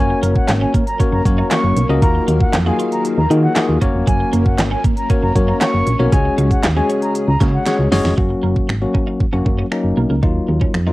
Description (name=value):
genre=dance-pop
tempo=117 BPM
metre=4/4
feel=straight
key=F# major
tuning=A4 = 440 Hz
part: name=concert flute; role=melody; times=0.0-7.8 s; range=F#5 to C#6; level=-23 LUFS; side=equal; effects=sidechain pumping, cassette tape
part: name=bell-like tine electric piano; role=accompaniment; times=0.0-10.9 s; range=F#3 to D#5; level=-19 LUFS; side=left 2 dB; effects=sidechain pumping, cassette tape
part: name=soft string machine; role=sustained chords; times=0.3-8.2 s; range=C#3 to E#5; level=-28 LUFS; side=equal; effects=phaser, ensemble chorus, sidechain pumping, cassette tape
part: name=twelve-string electric guitar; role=riff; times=0.0-10.9 s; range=F#3 to F#4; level=-27 LUFS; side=right 4 dB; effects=ensemble chorus, cassette tape
part: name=solid FM bass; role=bass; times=0.0-10.9 s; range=E#1 to D#3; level=-17 LUFS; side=equal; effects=sidechain pumping
part: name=pop drum kit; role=drums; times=0.2-10.9 s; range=finger snaps, handclaps, hi-hat, kick drum, snare drum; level=-17 LUFS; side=equal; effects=cassette tape
part: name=group handclap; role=percussion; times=0.5-7.8 s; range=none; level=-32 LUFS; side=right 3 dB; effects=none
room=light reverb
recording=home recording on cassette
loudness=-14 LUFS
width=side -18 dB against mid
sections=0.0-8.2 A section; 8.2-10.9 B section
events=drop 0.0-8.2; drum fill 7.7-8.2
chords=0.0 F#; 2.0 D#madd9; 3.8 F#; 6.1 C#sus4; 8.2 F#; 10.2 D#madd9